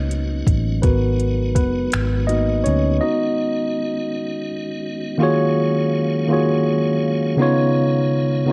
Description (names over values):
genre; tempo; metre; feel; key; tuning
slow six-eight R&B; 55 BPM (dotted quarters); 6/8; straight; Eb minor; A4 = 440 Hz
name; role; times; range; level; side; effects
mellow tine electric piano; accompaniment; 0.0-8.5 s; Db3 to D#5; -21 LUFS; equal; none
tonewheel organ; sustained chords; 0.0-8.5 s; Eb3 to F5; -33 LUFS; equal; chorus vibrato, fast rotary speaker
vintage muted fingered electric bass; bass; 0.0-3.0 s; Gb1 to D2; -23 LUFS; equal; none
smooth R&B drum kit; drums; 0.1-2.8 s; finger snaps, hi-hat, kick drum; -22 LUFS; equal; none
room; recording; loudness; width
light reverb, digital ambience; dark, warm production; -19 LUFS; mono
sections
0.0-5.2 A section; 5.2-8.5 B section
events
tine electric piano solo 0.0-5.2; break 3.0-5.2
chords
0.0 Bmaj9; 0.8 Abm9; 3.0 Db9sus4; 5.2 Ebm11; 7.4 Db9